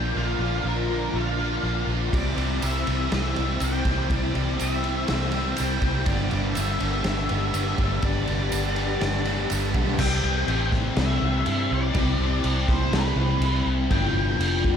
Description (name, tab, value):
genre	rock, shoegaze and dream pop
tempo	122 BPM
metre	4/4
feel	straight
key	C major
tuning	A4 = 441 Hz
part	octave-fuzz lead guitar	melody	0.0-14.6 s	Bb4 to G5	-31 LUFS	left 1 dB	distortion, slapback echo
part	ethereal airy pad	sustained chords	0.0-14.8 s	C4 to E6	-34 LUFS	left 2 dB	ensemble chorus, built-in reverb
part	cranked stack guitar	riff	0.0-10.0 s	G2 to G4	-33 LUFS	right 12 dB	overdrive, reverse reverb
part	crunchy overdriven guitar	riff	0.0-14.8 s	G2 to G4	-30 LUFS	left 11 dB	analog chorus
part	distorted electric guitar	riff	0.0-14.8 s	G2 to C4	-32 LUFS	equal	overdrive
part	vintage muted fingered electric bass	bass	0.0-14.8 s	F1 to G2	-26 LUFS	equal	none
part	raw garage drum kit	drums	2.1-14.8 s	crash cymbal, kick drum, ride cymbal, snare drum	-28 LUFS	equal	none
part	tambourine	percussion	2.6-9.6 s	none	-38 LUFS	right 19 dB	none
room	studio reverb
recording	none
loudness	-22 LUFS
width	side -8 dB against mid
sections	0.0-10.0 A section; 10.0-14.8 B section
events	none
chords	0.0 Bb; 2.1 Cadd9; 6.1 Gadd9; 10.0 Cmaj7; 13.9 G7